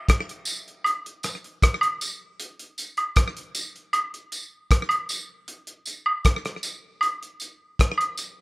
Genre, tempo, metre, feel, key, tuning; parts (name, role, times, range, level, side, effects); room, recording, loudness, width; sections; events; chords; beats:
reggae; 78 BPM; 4/4; straight
cloth-damped thuddy drum kit; drums; 0.1-8.4 s; hi-hat, kick drum, rim click; -22 LUFS; equal; slapback echo
tambourine and woodblock; percussion; 0.5-8.4 s; -24 LUFS; right 1 dB
studio ambience; rough home demo mix; -23 LUFS; side -24 dB against mid
0.0-8.4 A section
0.09 0.86 1.63 | 2.40 3.17 3.94 4.71 | 5.48 6.25 7.03 7.80